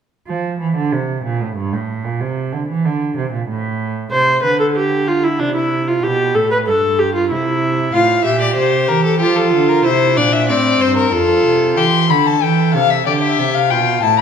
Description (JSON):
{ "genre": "classical, baroque-style fugue for string quartet", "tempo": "94 BPM", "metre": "3/4", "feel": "straight", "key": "F major", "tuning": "A4 = 440 Hz", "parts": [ { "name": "warm cello", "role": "bass", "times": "0.3-14.2 s", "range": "F2 to F3", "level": "-19 LUFS", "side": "right 5 dB", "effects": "none" }, { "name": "warm viola", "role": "accompaniment", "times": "4.1-11.8 s", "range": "C4 to C5", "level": "-15 LUFS", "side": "right 1 dB", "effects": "none" }, { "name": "rich violin", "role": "second line", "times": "7.9-14.2 s", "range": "E4 to F5", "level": "-16 LUFS", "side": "left 6 dB", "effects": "none" }, { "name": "dark violin", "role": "melody", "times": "11.8-14.2 s", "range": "D5 to C6", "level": "-15 LUFS", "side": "left 12 dB", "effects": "none" } ], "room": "wet recital hall reverb, RT60 1.5 s", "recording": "minimal, uncompressed stereo recording", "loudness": "-13 LUFS", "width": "side -7 dB against mid", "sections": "0.3-14.2 A section", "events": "none", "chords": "0.3 F; 1.6 Gm; 2.2 C7; 3.5 N.C.; 4.1 C; 5.4 Dm7/C; 6.0 G7; 7.3 C; 7.9 F/A; 9.2 Gm7/F; 9.9 C7; 11.1 F; 11.8 C; 13.1 Dm7; 13.7 G7" }